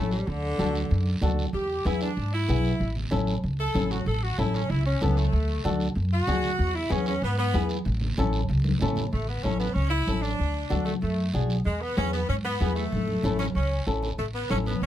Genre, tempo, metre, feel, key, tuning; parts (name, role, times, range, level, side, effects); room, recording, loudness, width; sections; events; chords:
latin, cumbia; 190 BPM; 4/4; straight; A major; A4 = 439 Hz
warm saxophone section; melody; 0.0-14.9 s; D3 to A4; -30 LUFS; equal
flamenco guitar; accompaniment; 0.0-14.7 s; B3 to A4; -30 LUFS; left 2 dB
upright bass; bass; 0.0-14.9 s; A1 to G#2; -26 LUFS; equal
guiro; percussion; 0.1-14.9 s; -42 LUFS; right 4 dB
congas; percussion; 0.3-14.8 s; -32 LUFS; left 1 dB
little or no reverb; close, detailed microphones; -24 LUFS; side -12 dB against mid
0.0-9.1 A section; 9.1-14.9 B section
saxophone section solo 0.0-9.1; drum fill 8.6-9.1, 12.9-14.2
0.3 D; 1.5 E7; 2.8 A; 5.3 D; 6.6 E; 7.9 A; 10.4 D; 11.7 E; 12.9 A